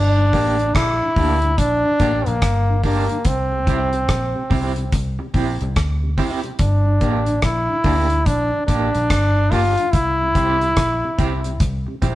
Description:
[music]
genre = roots reggae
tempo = 72 BPM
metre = 4/4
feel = swing 62% on 16ths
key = G dorian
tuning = A4 = 441 Hz
[part]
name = brilliant trombone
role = melody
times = 0.0-11.6 s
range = Bb3 to F4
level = -20 LUFS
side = equal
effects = none
[part]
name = vintage muted fingered electric bass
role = bass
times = 0.0-12.2 s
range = G1 to D2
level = -21 LUFS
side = equal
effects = none
[part]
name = mellow tonewheel organ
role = accompaniment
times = 0.2-12.2 s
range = G2 to G4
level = -31 LUFS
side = left 2 dB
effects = chorus vibrato, slow rotary speaker
[part]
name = electric guitar at the edge of break-up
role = accompaniment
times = 0.3-12.2 s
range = Bb3 to G4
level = -26 LUFS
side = right 4 dB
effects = tremolo
[part]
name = damped 70s drum kit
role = drums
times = 0.3-12.2 s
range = hi-hat, kick drum, rim click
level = -21 LUFS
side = equal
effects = none
[sound]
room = moderate stone room reverb, RT60 1.2 s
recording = band playing live in one room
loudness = -16 LUFS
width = side -15 dB against mid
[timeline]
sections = 0.0-12.2 A section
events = none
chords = 0.0 Gm; 3.3 C; 6.6 Gm; 9.9 C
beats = 0.75 1.59 2.42 | 3.25 4.09 4.92 5.76 | 6.59 7.43 8.27 9.10 | 9.94 10.77 11.61

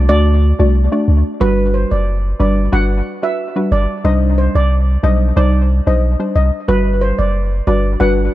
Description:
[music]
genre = dancehall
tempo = 91 BPM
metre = 4/4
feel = straight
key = G major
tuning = A4 = 439 Hz
[part]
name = punchy sub bass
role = bass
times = 0.0-8.3 s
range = F#1 to D2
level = -14 LUFS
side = equal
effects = none
[part]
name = steel pan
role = melody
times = 0.1-8.1 s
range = B4 to F#5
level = -21 LUFS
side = right 2 dB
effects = tape echo
[part]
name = soft round pluck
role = accompaniment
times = 0.1-8.2 s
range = G3 to D5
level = -18 LUFS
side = left 1 dB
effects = chorus, tape echo
[sound]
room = light reverb, studio ambience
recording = echo-heavy mix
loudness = -12 LUFS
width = side -15 dB against mid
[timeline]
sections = 0.0-1.4 A section; 1.4-8.3 B section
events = none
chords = 0.0 D; 1.4 Gmaj7; 4.0 Cmadd9; 6.7 Gmaj7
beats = 0.09 0.75 | 1.41 2.07 2.73 3.39 | 4.04 4.71 5.36 6.02 | 6.68 7.34 8.00

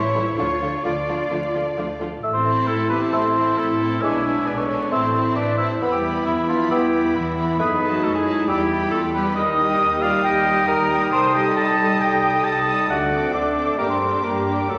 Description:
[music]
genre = quick classical-period movement for symphony orchestra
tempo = 134 BPM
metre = 4/4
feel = straight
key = A minor, G minor from 9.4 s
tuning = A4 = 440 Hz
[part]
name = rich studio violin section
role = melody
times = 0.0-14.7 s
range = C#5 to Eb6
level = -37 LUFS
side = equal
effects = none
[part]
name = warm cor anglais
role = second line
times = 0.0-14.8 s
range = E4 to A5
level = -25 LUFS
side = equal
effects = none
[part]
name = rich studio cello section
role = bass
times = 0.0-14.8 s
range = E3 to C5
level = -32 LUFS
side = equal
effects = none
[part]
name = rich studio double bass section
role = bass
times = 0.0-14.8 s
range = A1 to G2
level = -33 LUFS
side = equal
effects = none
[part]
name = rich studio viola section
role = accompaniment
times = 0.1-14.7 s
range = D3 to D4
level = -32 LUFS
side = equal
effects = none
[part]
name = rich studio violin section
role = second line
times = 0.2-14.7 s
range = A3 to A4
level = -34 LUFS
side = equal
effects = none
[part]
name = mellow hollow concert flute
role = second line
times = 2.2-14.8 s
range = D6 to E6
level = -30 LUFS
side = equal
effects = none
[part]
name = warm bassoon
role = accompaniment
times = 2.2-14.8 s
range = F#3 to B3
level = -31 LUFS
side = equal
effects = none
[part]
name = mellow French horn section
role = sustained chords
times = 2.2-14.8 s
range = F#3 to E4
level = -28 LUFS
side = equal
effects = none
[part]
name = warm clarinet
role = second line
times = 2.3-14.8 s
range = B3 to A5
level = -30 LUFS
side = equal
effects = none
[sound]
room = wet concert hall reverb, RT60 1.8 s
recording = vinyl crackle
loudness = -20 LUFS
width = mono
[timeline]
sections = 0.0-2.2 A section; 2.2-14.8 B section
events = none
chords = 0.4 Dm; 2.2 Am; 4.0 G#dim/B; 4.9 Am; 5.8 Em; 7.6 D#dim/F#; 8.5 Em; 9.4 Eb; 11.1 Am7b5/C; 12.9 D7; 13.8 Gm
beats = | 0.38 0.85 1.31 1.77 | 2.23 2.68 3.13 3.58 | 4.03 4.47 4.92 5.36 | 5.81 6.26 6.71 7.16 | 7.60 8.04 8.48 8.93 | 9.37 9.80 10.25 10.69 | 11.13 11.57 12.01 12.45 | 12.90 13.34 13.78 14.23 | 14.69

